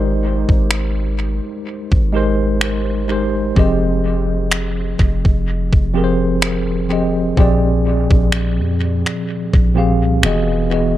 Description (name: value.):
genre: contemporary R&B.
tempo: 63 BPM.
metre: 4/4.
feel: swing 54% on 16ths.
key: unclear.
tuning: A4 = 441 Hz.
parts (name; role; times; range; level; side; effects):
tine electric piano; accompaniment; 0.0-11.0 s; Bb2 to F5; -18 LUFS; equal; overdrive, medium stereo tremolo, dub echo.
warm 808-style bass; bass; 0.0-11.0 s; E1 to F2; -19 LUFS; equal; none.
detuned 8-bit digital drum machine; drums; 0.5-10.5 s; finger snaps, kick drum; -16 LUFS; equal; dub echo.
room: digital ambience.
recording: echo-heavy mix.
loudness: -14 LUFS.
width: side -14 dB against mid.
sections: 0.0-11.0 A section.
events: none.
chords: 0.0 Abmaj9; 3.6 Fm7; 7.4 Bb13; 10.2 Emaj7.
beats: 0.71 1.66 2.61 | 3.56 4.52 5.47 6.42 | 7.37 8.33 9.28 10.23.